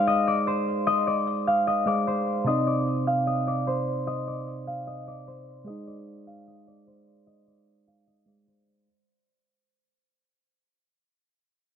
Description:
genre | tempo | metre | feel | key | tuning
hip hop | 150 BPM | 4/4 | half-time | unclear | A4 = 437 Hz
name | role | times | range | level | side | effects
concert harp | melody | 0.0-10.5 s | C5 to F5 | -25 LUFS | left 1 dB | low-pass filter, tape echo
bell-like tine electric piano | accompaniment | 0.0-8.9 s | C3 to F5 | -29 LUFS | right 1 dB | low-pass filter
room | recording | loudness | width
moderate lush hall reverb, RT60 2.3 s | dark, warm production | -23 LUFS | side -8 dB against mid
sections
0.0-8.9 A section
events
fade-out 0.0-8.9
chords
0.0 Ab; 2.5 Cmadd9; 5.7 Ab

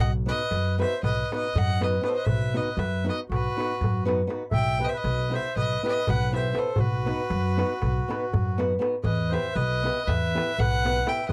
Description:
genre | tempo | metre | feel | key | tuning
balkan folk, Balkan wedding band | 239 BPM (eighths) | 9/8 | straight | unclear | A4 = 440 Hz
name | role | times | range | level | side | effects
bright violin | melody | 0.0-11.3 s | B4 to G5 | -33 LUFS | equal | none
accordion | second line | 0.0-11.3 s | F#4 to E5 | -34 LUFS | equal | none
upright bass | bass | 0.0-11.3 s | B1 to F#2 | -30 LUFS | equal | none
darbuka | percussion | 0.1-11.3 s | none | -32 LUFS | equal | none
flamenco guitar | accompaniment | 0.3-11.2 s | B3 to B4 | -31 LUFS | equal | none
room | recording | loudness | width
little or no reverb | dry, close 1970s-style studio recording | -26 LUFS | mono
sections
0.0-9.0 A section; 9.0-11.3 B section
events
none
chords
0.0 B; 4.5 Em/B; 6.8 B; 9.0 Em

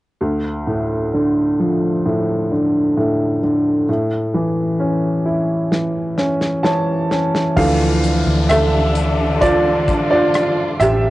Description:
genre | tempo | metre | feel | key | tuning
pop ballad | 65 BPM | 4/4 | straight | D harmonic minor, D minor from 7.6 s | A4 = 441 Hz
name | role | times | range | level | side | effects
warm upright piano | accompaniment | 0.2-11.1 s | D2 to A5 | -16 LUFS | equal | cassette tape
damped 70s drum kit | drums | 5.7-11.0 s | crash cymbal, hi-hat, kick drum, rim click, snare drum | -24 LUFS | left 1 dB | cassette tape
warm studio string section | sustained chords | 7.6-11.1 s | D3 to F4 | -23 LUFS | left 1 dB | cassette tape
vintage muted fingered electric bass | bass | 7.6-11.1 s | A1 to D2 | -19 LUFS | equal | none
downlifter | sound effects | 7.6-11.1 s | none | -30 LUFS | left 3 dB | none
room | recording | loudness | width
light reverb, small room ambience | home recording on cassette, nothing above 11.0 kHz | -15 LUFS | side -17 dB against mid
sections
0.2-7.6 A section; 7.6-11.1 B section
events
drum fill 5.7-7.6; upright piano fill 6.2-7.6; upright piano solo 7.6-11.1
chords
0.2 Dm; 3.9 A; 7.6 Dmadd9

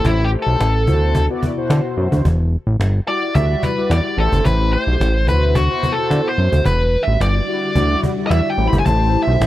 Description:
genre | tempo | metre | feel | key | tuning
early-eighties boogie funk | 109 BPM | 4/4 | straight | E minor | A4 = 440 Hz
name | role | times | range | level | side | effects
nasal lead guitar with a parked wah | melody | 0.0-9.5 s | E4 to B5 | -20 LUFS | equal | overdrive
mellow synth brass | accompaniment | 0.0-9.5 s | B2 to D5 | -23 LUFS | left 3 dB | chorus
fat analog bass | bass | 0.0-9.5 s | E1 to D3 | -16 LUFS | equal | none
cajon | drums | 0.0-9.5 s | none | -22 LUFS | equal | none
string machine, violins | sustained chords | 6.7-9.5 s | D3 to G4 | -26 LUFS | left 1 dB | ensemble chorus
room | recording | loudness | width
little or no reverb | dry, close 1970s-style studio recording | -14 LUFS | side -14 dB against mid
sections
0.0-9.5 A section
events
lead electric guitar solo 0.0-9.5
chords
0.0 Am7; 0.9 D13; 2.3 Em9; 4.2 Am7; 5.3 D13; 6.7 Em9; 8.6 Am7

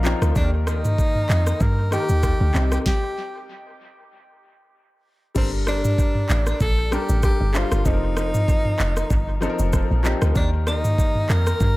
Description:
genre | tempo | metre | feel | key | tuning
afrobeats | 96 BPM | 4/4 | swing 55% on 16ths | G minor | A4 = 439 Hz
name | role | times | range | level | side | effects
breathy tenor saxophone | melody | 0.0-11.8 s | C4 to Bb4 | -27 LUFS | equal | dub echo
clear baby grand piano | accompaniment | 0.0-11.8 s | C3 to G5 | -28 LUFS | left 3 dB | dub echo
deep log drum bass | bass | 0.0-11.8 s | F1 to G2 | -21 LUFS | equal | none
afro-pop drum kit | drums | 0.0-11.8 s | crash cymbal, handclaps, kick drum, rim click, shaker, snare drum, toms | -22 LUFS | equal | none
room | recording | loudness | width
little or no reverb | echo-heavy mix | -18 LUFS | side -19 dB against mid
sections
0.0-5.4 A section; 5.4-11.8 A section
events
grand piano fill 0.0-0.4; stop 2.9-5.4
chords
0.4 Eb; 2.5 Cm; 4.1 N.C.; 5.4 Gmadd9; 7.9 F7sus4; 10.4 Eb

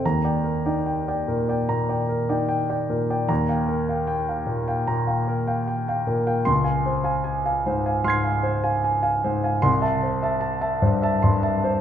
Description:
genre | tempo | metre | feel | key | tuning
classical, impressionist solo piano | 75 BPM | 4/4 | rubato | unclear | A4 = 440 Hz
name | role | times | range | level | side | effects
clear grand piano | solo | 0.0-11.8 s | C2 to C7 | -20 LUFS | equal | none
room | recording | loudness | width
wet recital hall reverb, RT60 1.7 s | minimal, uncompressed stereo recording | -21 LUFS | side -9 dB against mid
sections
0.0-11.8 A section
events
none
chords
0.0 Ebmaj7; 3.3 Ebadd9; 6.5 Dbmaj7; 9.6 C6

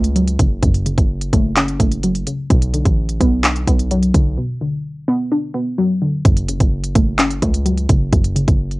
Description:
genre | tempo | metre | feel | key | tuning
hip hop, trap | 128 BPM | 4/4 | half-time | B minor | A4 = 444 Hz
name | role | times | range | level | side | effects
warbly dusty pluck | accompaniment | 0.0-8.8 s | F#2 to D4 | -19 LUFS | equal | chorus, low-pass filter
hard-hitting 808-style bass | bass | 0.0-8.8 s | F#1 to C#2 | -20 LUFS | equal | none
trap drum kit | drums | 0.0-8.8 s | handclaps, hi-hat, kick drum | -16 LUFS | equal | none
room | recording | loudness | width
little or no reverb | home recording on cassette | -14 LUFS | side -21 dB against mid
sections
0.0-8.8 A section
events
break 4.4-6.3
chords
0.0 F#m; 2.5 Bm; 6.3 F#m

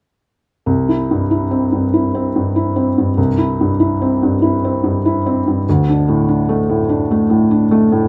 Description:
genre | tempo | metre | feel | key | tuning
classical | 73 BPM | 3/4 | rubato | C major | A4 = 440 Hz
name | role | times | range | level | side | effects
felt-muted upright piano | accompaniment | 0.7-8.1 s | C2 to E4 | -15 LUFS | equal | none
room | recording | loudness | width
light reverb | none | -16 LUFS | mono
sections
0.7-8.1 A section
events
none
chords
0.7 C; 5.7 D5

